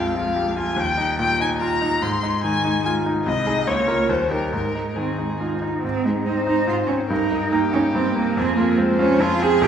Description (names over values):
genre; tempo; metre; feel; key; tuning
quick classical-period movement for piano trio; 144 BPM; 3/4; straight; Ab major; A4 = 439 Hz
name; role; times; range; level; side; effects
warm violin; melody; 0.0-9.7 s; G4 to C6; -24 LUFS; left 3 dB; none
rich cello; second line; 0.0-9.7 s; G3 to Ab4; -23 LUFS; right 4 dB; none
bright grand piano; accompaniment; 0.0-9.7 s; Bb1 to Bb4; -23 LUFS; left 1 dB; none
room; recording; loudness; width
wet scoring stage reverb, RT60 1.6 s; recorded in a church or concert hall, nothing above 10.3 kHz; -19 LUFS; side -8 dB against mid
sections
0.0-5.8 A section; 5.8-9.7 B section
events
none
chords
0.0 Bb5; 0.8 Eb; 2.0 Ab; 3.3 Ab/C; 3.7 Bbm/Db; 4.1 Eb; 4.5 Ab5; 5.8 Ab; 7.1 Eb/G; 8.4 Fm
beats
0.37 | 0.78 1.20 1.61 | 2.02 2.43 2.85 | 3.26 3.67 4.09 | 4.52 4.97 5.40 | 5.83 6.26 6.68 | 7.10 7.52 7.94 | 8.36 8.78 9.20 | 9.62